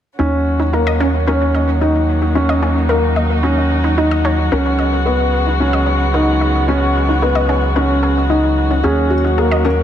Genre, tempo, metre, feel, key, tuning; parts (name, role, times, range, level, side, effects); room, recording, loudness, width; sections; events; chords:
electronica; 111 BPM; 4/4; straight; Eb minor; A4 = 440 Hz
dark string quartet; sustained chords; 0.2-9.8 s; Db3 to Gb4; -20 LUFS; right 1 dB
analog pluck; arpeggios; 0.2-9.7 s; Db4 to Eb5; -22 LUFS; left 1 dB; chorus, ping-pong delay
dark upright piano; riff; 0.2-9.8 s; Bb3 to Eb4; -17 LUFS; left 1 dB; ping-pong delay
round analog bass; bass; 0.2-9.8 s; Db2 to Eb2; -17 LUFS; right 1 dB
felt-muted upright piano; melody; 8.8-9.8 s; Gb4 to Bb4; -18 LUFS; equal
moderate scoring stage reverb, RT60 1.8 s, small room ambience; -13 LUFS; side -10 dB against mid
0.2-9.8 A section
0.2 Ebm7; 4.5 Db7sus4; 8.8 Ebm7